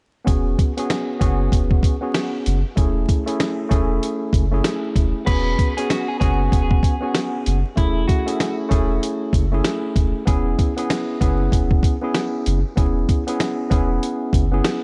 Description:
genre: hip hop, boom-bap hip-hop.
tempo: 96 BPM.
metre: 4/4.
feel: swing 61% on 16ths.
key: E major.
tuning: A4 = 440 Hz.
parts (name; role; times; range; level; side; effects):
tine electric piano; accompaniment; 0.2-14.8 s; A3 to G#4; -26 LUFS; equal; cassette tape, high-pass filter, low-pass filter.
soft dub sub bass; bass; 0.3-14.6 s; E1 to F#1; -24 LUFS; equal; none.
dusty soul sampler-style drum kit; drums; 0.3-14.8 s; crash cymbal, hi-hat, kick drum, snare drum; -22 LUFS; equal; vintage 12-bit sampler grit.
clean electric guitar; melody; 5.3-8.6 s; E4 to B4; -29 LUFS; equal; lush chorus, high-pass filter, low-pass filter, diffuse ambient delay.
room: light reverb.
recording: vinyl crackle, nothing above 10.6 kHz.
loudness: -20 LUFS.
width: mono.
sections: 0.3-5.3 A section; 5.3-14.8 B section.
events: none.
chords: 0.3 E69; 2.8 F#m7/E (rootless); 5.3 E69; 7.8 F#m7/E (rootless); 10.3 E69.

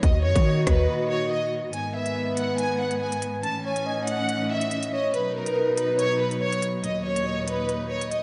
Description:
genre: hip hop, drill.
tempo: 141 BPM.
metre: 4/4.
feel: half-time.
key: G# minor.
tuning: A4 = 440 Hz.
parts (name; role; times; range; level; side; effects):
warm studio violin section; melody; 0.0-8.2 s; A#4 to A5; -30 LUFS; equal; tape echo.
muted studio string section; sustained chords; 0.0-8.2 s; D#2 to F#4; -32 LUFS; equal; none.
hard-hitting 808-style bass; bass; 0.0-0.9 s; D#2 to D#3; -25 LUFS; equal; none.
drill drum kit; drums; 0.0-8.2 s; hi-hat, kick drum, rim click; -28 LUFS; equal; none.
breathy flute-like synth lead; second line; 0.2-8.2 s; B4 to D#5; -32 LUFS; equal; chorus, tape echo.
room: wet lush hall reverb, RT60 1.8 s.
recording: dreamy mix soaked in reverb, nothing above 10.4 kHz.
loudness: -25 LUFS.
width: mono.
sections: 0.0-1.7 A section; 1.7-8.2 B section.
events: break 0.9-1.7, 6.8-8.2.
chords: 0.0 D#m; 1.7 G#m; 3.4 A; 5.1 B; 6.8 D#m.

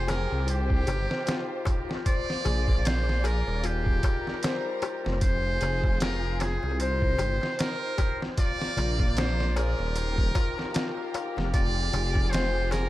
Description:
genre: trip hop.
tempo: 76 BPM.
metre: 4/4.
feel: swing 56% on 16ths.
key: F dorian.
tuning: A4 = 442 Hz.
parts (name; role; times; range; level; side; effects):
trumpet with metal mute; melody; 0.0-12.9 s; G4 to D5; -32 LUFS; right 1 dB; dub echo.
warm studio violin section; sustained chords; 0.0-12.9 s; G3 to D5; -37 LUFS; right 1 dB; none.
Celtic harp; arpeggios; 0.0-12.9 s; F4 to F5; -35 LUFS; left 5 dB; dub echo.
dark detuned saw bass; bass; 0.0-12.9 s; Eb1 to C2; -28 LUFS; equal; none.
trip hop sampler-style drum kit; drums; 0.1-12.9 s; hi-hat, kick drum, snare drum; -28 LUFS; equal; none.
darbuka; percussion; 0.1-12.9 s; none; -39 LUFS; left 3 dB; tape echo.
room: light reverb, small room ambience.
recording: echo-heavy mix.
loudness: -24 LUFS.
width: side -16 dB against mid.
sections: 0.0-12.9 A section.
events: none.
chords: 0.5 Cm; 2.1 Bb; 3.6 Eb; 5.2 Fm; 6.8 Cm; 8.4 Bb; 10.0 Eb; 11.5 Fmadd9.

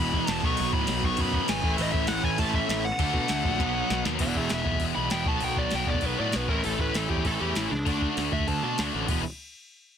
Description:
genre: punk rock.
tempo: 197 BPM.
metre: 4/4.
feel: straight.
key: E major.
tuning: A4 = 436 Hz.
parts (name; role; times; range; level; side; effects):
high-gain lead guitar; melody; 0.0-8.8 s; D4 to C#6; -30 LUFS; left 1 dB; distortion.
crunchy overdriven guitar; riff; 0.0-9.2 s; E2 to D4; -32 LUFS; right 15 dB; none.
thick fuzz guitar; riff; 0.0-4.2 s; E2 to D4; -34 LUFS; equal; distortion.
tight distorted guitar; riff; 0.0-9.2 s; A2 to F#4; -31 LUFS; left 18 dB; distortion.
fuzz picked electric bass; bass; 0.0-9.2 s; E1 to B2; -32 LUFS; equal; overdrive.
soft vintage rhythm box; drums; 0.1-9.2 s; crash cymbal, hi-hat, kick drum, snare drum; -30 LUFS; equal; none.
room: little or no reverb.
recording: dense, heavily limited modern master.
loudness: -24 LUFS.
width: side -8 dB against mid.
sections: 0.0-4.2 A section; 4.2-9.1 B section.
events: drum fill 3.6-4.2; lead electric guitar solo 4.2-9.1; kick and snare drop out 8.9.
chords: 0.4 B; 1.6 A; 3.0 D; 3.6 B; 4.2 E; 5.3 B; 6.5 A; 7.9 D; 9.1 E.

